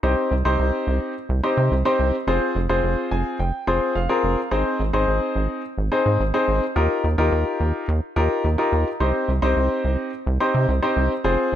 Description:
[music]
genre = synth-pop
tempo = 107 BPM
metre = 4/4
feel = straight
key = unclear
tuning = A4 = 442 Hz
[part]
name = clear grand piano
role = accompaniment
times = 0.0-11.5 s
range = C4 to Ab5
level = -21 LUFS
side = left 1 dB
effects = none
[part]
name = rubbery square bass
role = bass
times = 0.0-11.6 s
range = F1 to C3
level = -21 LUFS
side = right 1 dB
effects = none
[sound]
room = light reverb, small room ambience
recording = none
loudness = -19 LUFS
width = side -11 dB against mid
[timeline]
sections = 0.0-11.6 A section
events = grand piano fill 2.8-4.5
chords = 0.0 Cm; 2.3 Fm; 4.5 Ab; 6.8 Ebadd9; 9.0 Cm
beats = | 0.03 0.59 1.15 1.71 | 2.27 2.83 3.40 3.96 | 4.52 5.08 5.64 6.20 | 6.76 7.32 7.88 8.44 | 9.00 9.56 10.12 10.69 | 11.24

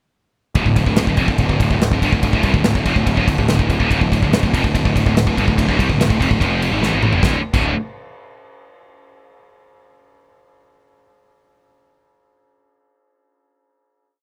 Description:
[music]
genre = heavy metal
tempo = 144 BPM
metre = 4/4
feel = straight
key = D minor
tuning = A4 = 439 Hz
[part]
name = scooped high-gain guitar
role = riff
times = 0.6-7.7 s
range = D2 to G3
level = -21 LUFS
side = equal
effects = distortion
[part]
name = fuzz picked electric bass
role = bass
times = 0.6-7.7 s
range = D1 to C2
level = -22 LUFS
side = equal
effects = overdrive
[part]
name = modern studio drum kit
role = drums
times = 0.6-7.6 s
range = crash cymbal, kick drum, ride cymbal, snare drum, toms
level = -20 LUFS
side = equal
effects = none
[sound]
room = little or no reverb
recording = none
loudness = -17 LUFS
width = mono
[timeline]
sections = 0.6-7.2 riff; 7.2-8.9 final chord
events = drum fill 6.8-7.2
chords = 0.6 Dm; 7.2 D5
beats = | 0.56 0.98 1.40 1.81 | 2.23 2.65 3.07 3.49 | 3.91 4.32 4.74 5.16 | 5.57 5.99 6.40 6.81 | 7.23 7.64

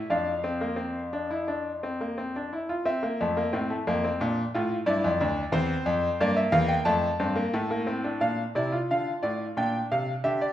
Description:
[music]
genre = classical, baroque-style 3-part fugue for grand piano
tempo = 89 BPM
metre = 4/4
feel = straight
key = F major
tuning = A4 = 437 Hz
[part]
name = bright concert grand piano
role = solo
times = 0.0-10.5 s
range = D2 to A5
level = -25 LUFS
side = equal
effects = none
[sound]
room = moderate recital hall reverb, RT60 1.6 s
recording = recorded in a church or concert hall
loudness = -25 LUFS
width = side -12 dB against mid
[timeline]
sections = 0.0-2.9 A section; 2.9-8.2 B section; 8.2-10.5 A section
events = none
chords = 0.1 F5; 2.9 F; 4.2 Bb; 5.5 C7/E; 6.9 F; 8.2 Bb; 9.6 Gm/Bb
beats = | 0.10 0.79 1.49 2.18 | 2.87 3.54 4.21 4.88 | 5.54 6.20 6.87 7.54 | 8.22 8.89 9.57 10.24

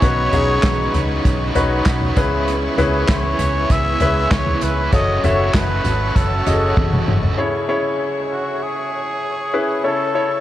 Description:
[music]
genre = piano-driven pop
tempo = 98 BPM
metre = 4/4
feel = straight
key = unclear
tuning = A4 = 440 Hz
[part]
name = growling trumpet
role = melody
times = 0.0-10.4 s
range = F#4 to E5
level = -23 LUFS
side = equal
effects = none
[part]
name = bright concert grand piano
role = accompaniment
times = 0.0-10.4 s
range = B2 to E5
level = -21 LUFS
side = left 2 dB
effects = none
[part]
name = warm studio string section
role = sustained chords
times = 0.0-10.4 s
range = C#4 to C#6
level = -30 LUFS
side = left 2 dB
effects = none
[part]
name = overdriven electric guitar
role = riff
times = 0.0-7.4 s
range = B2 to B4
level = -27 LUFS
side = right 4 dB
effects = tremolo
[part]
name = vintage muted fingered electric bass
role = bass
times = 0.0-7.3 s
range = F#1 to C#2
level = -22 LUFS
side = equal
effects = none
[part]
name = unplugged drum kit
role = drums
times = 0.0-7.4 s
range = handclaps, hi-hat, kick drum, snare drum, toms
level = -20 LUFS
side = equal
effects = none
[sound]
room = moderate huge ambient reverb, RT60 9.0 s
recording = dreamy mix soaked in reverb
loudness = -16 LUFS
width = side -13 dB against mid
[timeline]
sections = 0.0-7.4 A section; 7.4-10.4 B section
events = drum fill 6.8-7.4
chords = 0.0 Badd9; 2.2 C#m7; 4.9 F#m; 7.4 C#m; 9.8 A/C#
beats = | 0.02 0.64 1.25 1.86 | 2.48 3.09 3.70 4.32 | 4.93 5.54 6.16 6.77 | 7.39 8.00 8.62 9.23 | 9.85

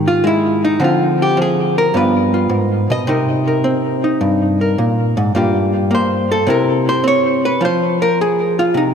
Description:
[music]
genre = solo jazz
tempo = 106 BPM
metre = 4/4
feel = swing 69% on 8ths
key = unclear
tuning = A4 = 440 Hz
[part]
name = hollow-body jazz guitar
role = solo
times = 0.0-8.9 s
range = G2 to Eb5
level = -13 LUFS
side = equal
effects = diffuse ambient delay
[sound]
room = wet church reverb, RT60 2.6 s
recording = dreamy mix soaked in reverb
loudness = -13 LUFS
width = side -7 dB against mid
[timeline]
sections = 0.0-8.9 A section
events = hollow-body jazz guitar solo 0.0-8.9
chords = 0.0 Absus2; 0.8 Dm7b5; 1.9 G7b9; 3.1 Cm7; 5.3 Gm11; 6.5 C; 7.6 Fm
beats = 0.23 | 0.80 1.36 1.93 2.50 | 3.07 3.63 4.20 4.77 | 5.33 5.90 6.47 7.04 | 7.60 8.17 8.74

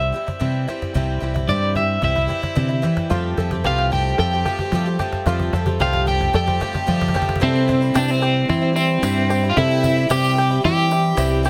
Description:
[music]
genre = indie folk with a building arrangement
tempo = 111 BPM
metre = 4/4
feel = straight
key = C major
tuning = A4 = 441 Hz
[part]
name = electric guitar at the edge of break-up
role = melody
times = 0.0-11.4 s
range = C4 to G5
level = -24 LUFS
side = equal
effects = tremolo
[part]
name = fingerpicked steel-string acoustic guitar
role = accompaniment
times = 0.0-3.1 s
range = G2 to G4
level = -30 LUFS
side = equal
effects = none
[part]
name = picked twelve-string acoustic guitar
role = accompaniment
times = 0.0-11.5 s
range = C3 to G4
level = -30 LUFS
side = equal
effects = none
[part]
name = fingered electric bass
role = bass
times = 0.0-11.5 s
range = C2 to F3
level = -23 LUFS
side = equal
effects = none
[part]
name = cajon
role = drums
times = 0.3-11.5 s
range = none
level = -29 LUFS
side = equal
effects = none
[part]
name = bright fiddle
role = second line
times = 2.0-11.4 s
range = E4 to G5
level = -31 LUFS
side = equal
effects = none
[part]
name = warm grand piano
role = accompaniment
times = 3.1-11.5 s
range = F1 to G5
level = -33 LUFS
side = equal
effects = none
[part]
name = open-back banjo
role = arpeggios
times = 3.1-11.5 s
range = E4 to A4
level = -29 LUFS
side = equal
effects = none
[part]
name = tambourine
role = percussion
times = 7.6-11.5 s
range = none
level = -40 LUFS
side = equal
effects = none
[sound]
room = light reverb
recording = none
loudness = -19 LUFS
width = mono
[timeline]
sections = 0.0-7.4 A section; 7.4-11.5 B section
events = build-up 0.0-7.4; drum fill 0.0-7.4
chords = 0.0 C; 3.1 Fadd9; 7.4 C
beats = 0.41 | 0.95 1.49 2.03 2.57 | 3.11 3.65 4.19 4.73 | 5.27 5.80 6.34 6.88 | 7.42 7.96 8.49 9.03 | 9.57 10.10 10.64 11.18

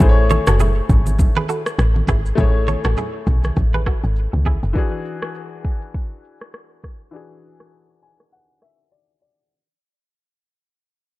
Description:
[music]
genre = afrobeats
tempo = 101 BPM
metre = 4/4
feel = swing 58% on 16ths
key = A major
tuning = A4 = 441 Hz
[part]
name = bright grand piano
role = accompaniment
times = 0.0-9.5 s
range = E3 to G#5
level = -25 LUFS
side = left 4 dB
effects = none
[part]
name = woody log drum bass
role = bass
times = 0.0-4.7 s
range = F#1 to C#2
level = -17 LUFS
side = equal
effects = none
[part]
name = afro-pop drum kit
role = drums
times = 0.0-9.5 s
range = kick drum, rim click, shaker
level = -20 LUFS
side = equal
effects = none
[part]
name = congas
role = percussion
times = 0.0-4.6 s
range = none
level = -26 LUFS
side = right 2 dB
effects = none
[part]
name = direct-recorded clean electric guitar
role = riff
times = 0.3-4.6 s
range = E4 to C#5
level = -26 LUFS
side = right 5 dB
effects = wide subtle chorus, tape echo
[sound]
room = digital ambience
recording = dark, warm production, low-pass filter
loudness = -16 LUFS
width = side -18 dB against mid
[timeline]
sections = 0.0-9.5 A section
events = fade-out 0.0-9.5; filter sweep 0.0-9.5; grand piano fill 7.7-9.5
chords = 0.0 Amaj7; 4.8 E9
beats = | 0.00 0.60 1.19 1.78 | 2.38 2.97 3.57 4.16 | 4.76 5.35 5.94 6.54 | 7.13 7.73 8.32 8.91

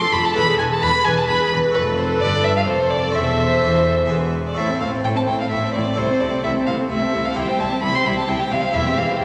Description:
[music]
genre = classical, baroque-style concerto movement with solo episodes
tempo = 129 BPM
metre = 3/4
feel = straight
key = A minor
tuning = A4 = 439 Hz
[part]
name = warm violin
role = melody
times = 0.0-9.2 s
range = B4 to C6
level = -23 LUFS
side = equal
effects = none
[part]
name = warm chamber violin section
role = second line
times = 0.0-9.2 s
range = C4 to C5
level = -26 LUFS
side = equal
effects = none
[part]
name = dark studio viola section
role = accompaniment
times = 0.0-9.2 s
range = G3 to B4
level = -27 LUFS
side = equal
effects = none
[part]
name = harpsichord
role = accompaniment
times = 0.0-9.2 s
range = E2 to C5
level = -30 LUFS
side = equal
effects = none
[part]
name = clear chamber violin section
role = melody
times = 0.1-9.2 s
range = A4 to B5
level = -33 LUFS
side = equal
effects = none
[part]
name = clear chamber double bass section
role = bass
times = 0.1-9.2 s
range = E1 to E2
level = -30 LUFS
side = equal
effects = none
[part]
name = warm chamber cello section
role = bass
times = 0.1-9.2 s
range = E2 to E3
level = -29 LUFS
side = equal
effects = none
[sound]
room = wet scoring stage reverb, RT60 2.0 s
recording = none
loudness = -19 LUFS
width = mono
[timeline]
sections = 0.0-4.6 A section; 4.6-9.2 A section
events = none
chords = 0.4 E; 1.7 F; 3.2 Am/E; 4.1 E; 4.6 Am; 6.0 Am/C; 7.4 C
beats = | 0.36 0.82 1.29 | 1.75 2.21 2.68 | 3.15 3.63 4.10 | 4.58 5.05 5.51 | 5.98 6.44 6.90 | 7.37 7.83 8.29 | 8.75 9.21

